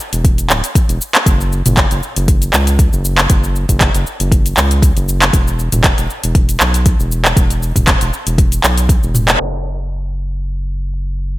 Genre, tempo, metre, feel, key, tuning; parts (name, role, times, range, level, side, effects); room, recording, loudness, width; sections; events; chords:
afro house; 118 BPM; 4/4; swing 54% on 16ths; A4 = 440 Hz
afro-pop drum kit; drums; 0.0-11.4 s; crash cymbal, handclaps, hi-hat, shaker, toms; -15 LUFS; equal; small room ambience
round analog bass; bass; 0.1-11.4 s; D1 to C#2; -16 LUFS; equal; sidechain pumping
electronic kick drum; drums; 0.2-9.0 s; -13 LUFS; equal; small room ambience
light reverb, digital ambience; low-pass filter; -11 LUFS; side -17 dB against mid
0.0-9.4 A section; 9.4-11.4 B section
band accent 9.3; filter sweep 9.4-11.4